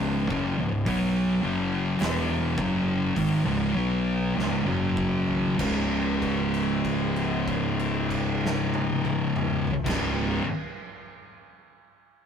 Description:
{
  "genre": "stoner and doom metal",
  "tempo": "48-54 BPM",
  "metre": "4/4",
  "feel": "straight",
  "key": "C# minor",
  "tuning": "A4 = 439 Hz",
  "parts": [
    { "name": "thick fuzz guitar", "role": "riff", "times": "0.0-10.4 s", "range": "C#2 to B3", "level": "-26 LUFS", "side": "left 3 dB", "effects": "distortion" },
    { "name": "thick fuzz guitar", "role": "riff", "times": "0.0-10.4 s", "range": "C#2 to B3", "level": "-30 LUFS", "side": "right 5 dB", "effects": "distortion" },
    { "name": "fuzz fingered electric bass", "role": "bass", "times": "0.0-10.4 s", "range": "C#1 to B1", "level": "-34 LUFS", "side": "right 1 dB", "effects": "overdrive" },
    { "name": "oversized low-tuned drum kit", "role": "drums", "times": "0.3-10.2 s", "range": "crash cymbal, hi-hat, kick drum, snare drum, toms", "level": "-33 LUFS", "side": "right 2 dB", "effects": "none" }
  ],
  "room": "moderate small room reverb, RT60 0.5 s",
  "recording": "rough rehearsal-room recording, warm saturation",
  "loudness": "-23 LUFS",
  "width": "side -7 dB against mid",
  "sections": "0.0-5.6 A section; 5.6-10.6 B section",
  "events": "slowing down 0.0-5.6; drum fill 4.4-5.6; held note 5.6-9.9",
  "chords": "0.0 C#m; 5.6 C#5"
}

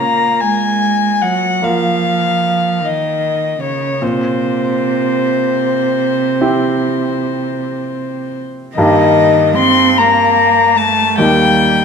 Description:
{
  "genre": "classical, slow romantic movement for piano trio",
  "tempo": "50 BPM (dotted quarters)",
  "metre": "12/8",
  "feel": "rubato",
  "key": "unclear",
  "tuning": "A4 = 440 Hz",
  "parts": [
    { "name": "warm violin", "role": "melody", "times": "0.0-11.8 s", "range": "C5 to C6", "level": "-14 LUFS", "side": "left 7 dB", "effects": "none" },
    { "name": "warm cello", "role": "second line", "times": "0.0-11.8 s", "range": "C3 to C4", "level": "-17 LUFS", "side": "right 9 dB", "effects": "none" },
    { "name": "warm grand piano", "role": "accompaniment", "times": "0.0-11.8 s", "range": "Eb2 to Bb4", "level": "-18 LUFS", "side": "right 1 dB", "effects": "none" }
  ],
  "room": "wet recital hall reverb, RT60 1.4 s",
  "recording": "none",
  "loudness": "-12 LUFS",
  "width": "side -6 dB against mid",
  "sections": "0.0-11.8 A section",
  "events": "none",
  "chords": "0.0 Bb5; 4.0 C7/Bb; 8.8 Eb/G; 11.2 Eb"
}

